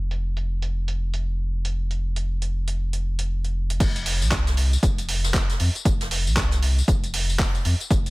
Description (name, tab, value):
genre	deep house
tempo	117 BPM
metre	4/4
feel	swing 60% on 16ths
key	unclear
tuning	A4 = 440 Hz
part	warm sub bass	bass	0.0-8.1 s	F1 to F2	-23 LUFS	equal	tube saturation, sidechain pumping
part	dusty soul sampler-style drum kit	drums	0.1-8.1 s	crash cymbal, handclaps, hi-hat, tambourine	-28 LUFS	equal	overdrive, studio reverb
part	electronic kick drum	drums	3.8-8.0 s	none	-22 LUFS	equal	studio reverb
part	jazz brush drum kit	drums	3.8-8.1 s	hi-hat, snare drum	-35 LUFS	right 3 dB	high-pass filter on hats, studio reverb, high-pass filter on snare, high-pass filter on room
room	little or no reverb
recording	low-pass filter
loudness	-21 LUFS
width	side -23 dB against mid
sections	0.0-3.8 A section; 3.8-8.1 B section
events	filter sweep 0.0-3.8; drop 3.8-8.1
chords	none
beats	0.21 0.73 1.24 | 1.75 2.27 2.78 3.29 | 3.80 4.32 4.83 5.34 | 5.86 6.37 6.88 7.39 | 7.91